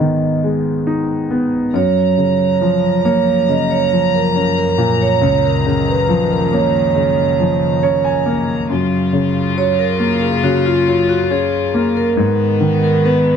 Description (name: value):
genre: pop ballad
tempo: 69 BPM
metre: 4/4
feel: straight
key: F# major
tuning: A4 = 440 Hz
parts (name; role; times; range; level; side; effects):
- vibraphone with medium mallets; melody; 0.0-13.4 s; E#4 to D#5; -17 LUFS; right 5 dB; slapback echo
- clear concert grand piano; accompaniment; 0.0-13.4 s; C#2 to G#5; -16 LUFS; left 1 dB; none
- warm chamber string section; sustained chords; 1.7-13.4 s; F#2 to A#5; -21 LUFS; left 3 dB; none
room: moderate studio reverb, RT60 0.5 s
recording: dry, close 1970s-style studio recording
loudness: -13 LUFS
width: side -7 dB against mid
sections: 0.0-13.4 A section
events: grand piano fill 7.4-8.7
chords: 0.0 G#m; 1.7 F#maj7; 8.7 F#maj9; 12.2 G#m